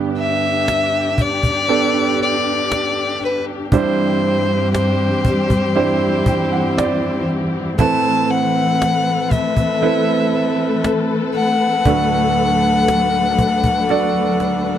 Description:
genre	pop ballad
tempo	59 BPM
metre	4/4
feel	straight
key	G major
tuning	A4 = 440 Hz
part	bright grand piano	accompaniment	0.0-14.8 s	D2 to G5	-20 LUFS	right 7 dB	none
part	warm studio string section	sustained chords	0.0-14.8 s	G2 to B4	-20 LUFS	left 2 dB	none
part	rich violin	melody	0.2-14.8 s	B4 to A5	-19 LUFS	left 4 dB	slapback echo
part	cajon	drums	0.2-14.6 s	none	-18 LUFS	equal	none
room	light reverb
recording	dry, close 1970s-style studio recording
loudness	-15 LUFS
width	side -10 dB against mid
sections	0.0-14.8 A section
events	grand piano fill 5.8-7.8; drum fill 13.9-14.8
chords	0.0 G; 3.7 Cadd9/G; 7.8 Amadd9; 11.9 D6

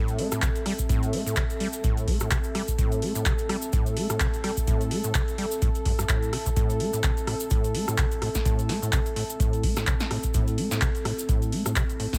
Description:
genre	acid house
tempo	127 BPM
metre	4/4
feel	swing 56% on 16ths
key	A minor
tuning	A4 = 440 Hz
part	warm analog pad	sustained chords	0.0-12.2 s	A4	-36 LUFS	equal	chorus, sidechain pumping
part	deep acid bass	riff	0.0-12.1 s	G2 to A3	-32 LUFS	equal	overdrive, analog chorus, dub echo
part	warbly tape-like pad	texture	0.0-12.2 s	C4 to E5	-39 LUFS	equal	chorus, built-in reverb, sidechain pumping
part	electro analog drum machine	drums	0.1-12.2 s	handclaps, hi-hat, rim click, snare drum	-34 LUFS	equal	none
part	tube shaker	percussion	0.1-12.2 s	none	-39 LUFS	equal	none
part	electronic kick drum	drums	0.4-12.2 s	none	-28 LUFS	equal	none
room	light reverb, digital ambience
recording	none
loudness	-26 LUFS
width	mono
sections	0.0-12.2 A section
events	none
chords	0.0 Am

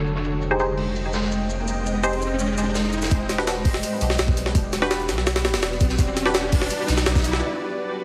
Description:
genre	drum and bass, jungle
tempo	167 BPM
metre	4/4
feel	straight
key	E minor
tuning	A4 = 440 Hz
part	granular cloud pad	sustained chords	0.0-8.0 s	Ab3 to G5	-29 LUFS	equal	built-in reverb, vintage 12-bit sampler grit
part	soft dub sub bass	bass	0.0-7.4 s	E1 to B1	-30 LUFS	equal	none
part	big rock drum kit	drums	0.1-7.3 s	hi-hat, shaker, snare drum	-35 LUFS	equal	high-pass filter on hats, high-pass filter on snare, high-pass filter on perc, high-pass filter on room
part	riser	sound effects	1.4-7.4 s	none	-33 LUFS	equal	none
part	filtered dub chord stab	stabs	0.5-6.3 s	D4 to C5	-29 LUFS	equal	chorus, cassette tape, dub echo
part	jungle sampler-style drum kit	drums	3.1-7.4 s	hi-hat, kick drum, snare drum	-24 LUFS	equal	none
room	moderate digital room reverb, RT60 1.0 s, small room reverb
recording	heavily compressed radio sound, vinyl crackle, low-pass filter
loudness	-23 LUFS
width	mono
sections	0.0-3.1 A section; 3.1-8.0 B section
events	filter sweep on ambient pad 0.0-3.1, 3.1-8.0; filter sweep on synth stab 0.0-3.1; filter sweep 0.0-3.1; riser 1.4-3.1, 3.1-7.4; build-up 3.1-8.0; break 7.4-8.0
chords	0.0 Fm9; 3.1 Em9; 7.4 Dmaj7/C#

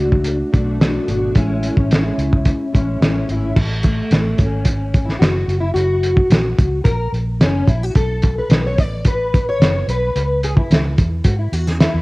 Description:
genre	indie pop, bedroom pop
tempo	109 BPM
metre	4/4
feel	straight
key	A major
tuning	A4 = 440 Hz
part	fingerpicked plugged-in steel-string acoustic guitar	accompaniment	0.0-12.0 s	A2 to D5	-21 LUFS	left 1 dB	ensemble chorus, warbly pitch drift, cassette tape
part	vintage muted fingered electric bass	bass	0.0-12.0 s	F#1 to G#2	-20 LUFS	equal	none
part	cloth-damped thuddy drum kit	drums	0.1-11.9 s	crash cymbal, hi-hat, kick drum, snare drum	-15 LUFS	equal	none
room	light reverb, studio ambience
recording	home recording on cassette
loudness	-14 LUFS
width	side -22 dB against mid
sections	0.0-3.6 A section; 3.6-12.0 B section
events	steel-string acoustic guitar solo 3.6-12.0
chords	0.0 Bm7; 1.4 Amaj7; 3.6 A6; 5.5 F#; 8.0 B5; 10.2 C#m

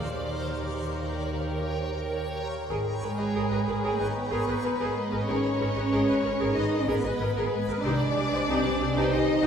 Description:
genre	cinematic, suspense film score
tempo	93 BPM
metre	4/4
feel	straight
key	unclear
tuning	A4 = 439 Hz
part	clear chamber violin section	melody	0.0-9.5 s	A#4 to D#5	-39 LUFS	equal	none
part	rich chamber violin section	second line	0.0-9.5 s	G#4 to D#5	-33 LUFS	left 3 dB	none
part	rich chamber viola section	accompaniment	0.0-9.5 s	Eb4 to C5	-32 LUFS	equal	none
part	backwards swelling texture	sustained chords	0.0-9.5 s	Bb4 to G#5	-34 LUFS	right 2 dB	built-in reverb
part	marimba with medium mallets	riff	0.0-9.5 s	G#2 to Eb4	-34 LUFS	left 1 dB	none
part	dark chamber cello section	bass	0.0-9.5 s	Eb3 to D#4	-31 LUFS	right 2 dB	none
part	rich chamber double bass section	bass	0.0-9.5 s	G#1 to Eb2	-34 LUFS	right 1 dB	none
part	mellow French horn section	sustained chords	2.7-9.3 s	D#3 to G#4	-36 LUFS	left 3 dB	none
part	rich chamber violin section	texture	2.7-7.5 s	A#5 to B5	-41 LUFS	left 3 dB	none
room	wet scoring stage reverb, RT60 1.7 s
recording	heard from further back in the room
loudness	-25 LUFS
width	side -7 dB against mid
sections	0.0-2.7 A section; 2.7-9.5 B section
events	none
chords	0.0 Eb7; 2.7 G#madd9; 7.8 Cmadd9

